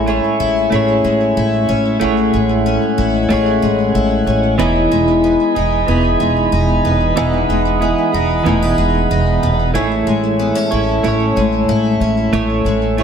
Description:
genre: dream pop.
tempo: 93 BPM.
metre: 4/4.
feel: straight.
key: unclear.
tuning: A4 = 439 Hz.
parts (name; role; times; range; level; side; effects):
direct-recorded clean electric guitar; accompaniment; 0.0-13.0 s; E3 to C#5; -19 LUFS; right 5 dB; tremolo, wide subtle chorus.
percussive tonewheel organ; sustained chords; 0.0-13.0 s; C#5 to B5; -20 LUFS; right 1 dB; slow rotary speaker.
picked twelve-string acoustic guitar; arpeggios; 0.0-13.0 s; A2 to E4; -17 LUFS; left 5 dB; lush chorus, digital delay.
upright bass; bass; 0.0-13.0 s; E1 to A1; -19 LUFS; right 1 dB; none.
vibraphone with medium hard mallets; texture; 0.0-12.9 s; C#5 to D#6; -29 LUFS; left 2 dB; none.
room: moderate recital hall reverb, RT60 1.6 s, small room ambience.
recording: none.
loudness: -13 LUFS.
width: side -7 dB against mid.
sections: 0.0-13.0 A section.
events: none.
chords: 0.0 Amaj7; 4.6 Emaj7; 9.8 Amaj7.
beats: 0.07 0.72 1.36 | 2.01 2.65 3.30 3.94 | 4.59 5.23 5.88 6.52 | 7.17 7.82 8.46 9.11 | 9.75 10.39 11.04 11.69 | 12.33 12.98.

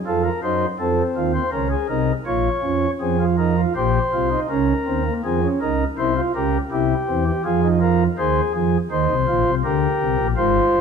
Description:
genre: classical, baroque-style 3-part fugue for pipe organ.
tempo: 82 BPM.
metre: 4/4.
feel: straight.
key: Bb minor, F minor from 3.0 s.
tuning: A4 = 437 Hz.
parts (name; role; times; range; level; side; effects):
pipe organ, flutes; solo; 0.1-10.8 s; G1 to Db5; -18 LUFS; equal; none.
room: wet recital hall reverb, RT60 1.4 s.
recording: none.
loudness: -18 LUFS.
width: side -6 dB against mid.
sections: 0.0-3.0 A section; 3.0-10.8 B section.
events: none.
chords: 0.1 F7; 1.5 Bbm; 3.0 Fm; 4.5 Bbm/Db; 6.0 C7; 7.4 Fm; 8.9 Cm.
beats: | 0.07 0.79 1.53 2.27 | 3.01 3.76 4.50 5.24 | 5.98 6.71 7.44 8.18 | 8.91 9.65 10.38.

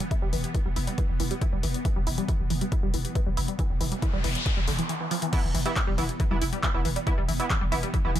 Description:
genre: driving peak-time techno.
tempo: 138 BPM.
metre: 4/4.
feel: straight.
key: E minor.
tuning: A4 = 440 Hz.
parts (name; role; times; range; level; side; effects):
tight sequenced synth; riff; 0.0-8.2 s; D3 to E4; -32 LUFS; equal; chorus, phaser, sidechain pumping, tape echo.
swarming drone; drone; 0.0-8.2 s; E3 to B3; -37 LUFS; right 1 dB; built-in reverb, sidechain pumping.
punchy analog drum machine; drums; 0.0-8.2 s; crash cymbal, handclaps, hi-hat; -33 LUFS; left 2 dB; none.
electronic kick drum; drums; 0.1-8.0 s; none; -27 LUFS; equal; none.
growling 808-style bass; bass; 0.2-8.2 s; E1; -31 LUFS; equal; overdrive, sidechain pumping, low-pass filter.
noise sweep; sound effects; 3.9-5.3 s; none; -33 LUFS; left 1 dB; none.
sync-sweep polysynth; stabs; 5.3-8.1 s; E3 to E4; -32 LUFS; right 3 dB; chorus, sidechain pumping, dub echo.
room: little or no reverb.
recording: none.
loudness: -24 LUFS.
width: side -12 dB against mid.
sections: 0.0-5.3 A section; 5.3-8.2 B section.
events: noise sweep 3.9-5.3; break 4.9-5.3; drop 5.3-8.2.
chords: 0.0 E5.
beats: | 0.11 0.55 0.98 1.42 | 1.85 2.29 2.72 3.15 | 3.59 4.02 4.46 4.89 | 5.33 5.76 6.20 6.63 | 7.07 7.50 7.94.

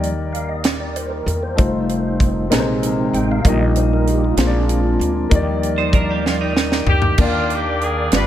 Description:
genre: slow gospel.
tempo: 64 BPM (dotted quarters).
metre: 6/8.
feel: straight.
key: Eb major.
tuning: A4 = 440 Hz.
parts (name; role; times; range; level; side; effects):
warm upright piano; accompaniment; 0.0-8.3 s; G2 to G5; -22 LUFS; left 4 dB; none.
mellow French horn section; sustained chords; 0.0-7.2 s; Eb3 to D5; -31 LUFS; right 1 dB; none.
mellow tonewheel organ; sustained chords; 0.0-8.3 s; F3 to D6; -22 LUFS; right 3 dB; fast rotary speaker, chorus vibrato.
upright bass; bass; 0.0-8.3 s; F1 to Fb2; -22 LUFS; equal; none.
tight funk drum kit; drums; 0.0-8.3 s; crash cymbal, hi-hat, kick drum, snare drum, toms; -19 LUFS; right 1 dB; none.
clean electric guitar; second line; 5.8-7.1 s; G3 to C5; -24 LUFS; right 7 dB; analog chorus.
bright saxophone section; melody; 6.9-8.3 s; Bb3 to B4; -21 LUFS; left 1 dB; none.
room: light reverb, small room ambience.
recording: none.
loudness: -15 LUFS.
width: side -11 dB against mid.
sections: 0.0-7.2 A section; 7.2-8.3 B section.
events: tonewheel organ solo 0.0-7.2; drum fill 6.2-7.2.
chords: 0.0 Ebmaj7; 1.6 F7; 2.5 Bb9sus4; 3.5 Eb/Bb; 4.4 Bb7; 5.3 Ebmaj7.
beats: 0.66 | 1.59 2.52 | 3.45 4.38 | 5.32 6.25 | 7.18 8.12.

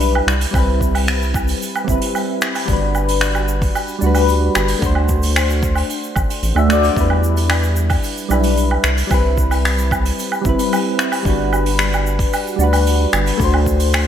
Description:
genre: sunset chillout.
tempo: 112 BPM.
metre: 4/4.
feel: straight.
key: unclear.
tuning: A4 = 440 Hz.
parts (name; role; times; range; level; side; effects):
soft electric-piano-like synth keys; accompaniment; 0.0-14.1 s; G3 to E5; -19 LUFS; left 1 dB; chorus, phaser, auto-pan, ping-pong delay.
round analog bass; bass; 0.0-14.1 s; G1 to E2; -18 LUFS; equal; none.
soft brush drum kit; drums; 0.0-14.0 s; finger snaps, hi-hat, shaker, woodblock; -21 LUFS; right 2 dB; gated reverb.
electronic kick drum; drums; 0.5-13.8 s; none; -21 LUFS; equal; overdrive.
room: moderate lush hall reverb, RT60 2.5 s.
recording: bright 1980s-style digital production.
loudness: -14 LUFS.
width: side -9 dB against mid.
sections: 0.0-14.1 A section.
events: none.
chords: 0.3 Cmaj7; 2.7 Gmaj7; 4.8 D7; 7.0 Em7; 8.8 Cmaj7; 11.3 Gmaj7; 13.4 D7.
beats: 0.01 | 0.55 1.08 1.62 2.15 | 2.69 3.22 3.76 4.29 | 4.83 5.37 5.90 6.44 | 6.97 7.51 8.04 8.58 | 9.12 9.65 10.19 10.72 | 11.26 11.79 12.33 12.87 | 13.40 13.94.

